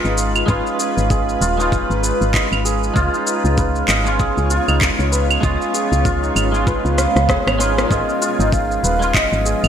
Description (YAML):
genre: organic downtempo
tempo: 97 BPM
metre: 4/4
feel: swing 58% on 16ths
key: G# dorian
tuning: A4 = 441 Hz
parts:
  - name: clean electric guitar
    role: accompaniment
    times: 0.0-9.7 s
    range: G#3 to E#4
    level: -23 LUFS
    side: right 1 dB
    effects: analog chorus, sidechain pumping, ping-pong delay
  - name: granular cloud pad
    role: sustained chords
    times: 0.0-9.7 s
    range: E#3 to C#5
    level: -27 LUFS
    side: left 1 dB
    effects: built-in reverb, wide subtle chorus, sidechain pumping
  - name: santur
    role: arpeggios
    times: 0.0-9.7 s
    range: D#4 to E#5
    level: -22 LUFS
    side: right 1 dB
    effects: ping-pong delay
  - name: woody FM bass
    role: bass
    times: 0.0-9.7 s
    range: D#1 to C#2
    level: -20 LUFS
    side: equal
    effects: sidechain pumping
  - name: electronic shaker, claves, handclaps and rim click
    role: drums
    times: 0.0-9.7 s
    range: none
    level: -21 LUFS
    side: equal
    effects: overdrive, small room ambience, gated reverb
  - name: electronic kick drum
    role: drums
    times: 0.5-9.3 s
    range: none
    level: -21 LUFS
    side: equal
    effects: overdrive, small room ambience
  - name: breathy mellow low ney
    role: melody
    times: 7.3-9.7 s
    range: C#5 to E#5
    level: -22 LUFS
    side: equal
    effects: digital delay
room: moderate lush hall reverb, RT60 1.8 s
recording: bright 1980s-style digital production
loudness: -15 LUFS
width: side -8 dB against mid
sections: 0.0-7.9 A section; 7.9-9.7 B section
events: drum fill 7.0-7.9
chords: 0.0 G#m6; 3.0 C#7; 7.9 G#m69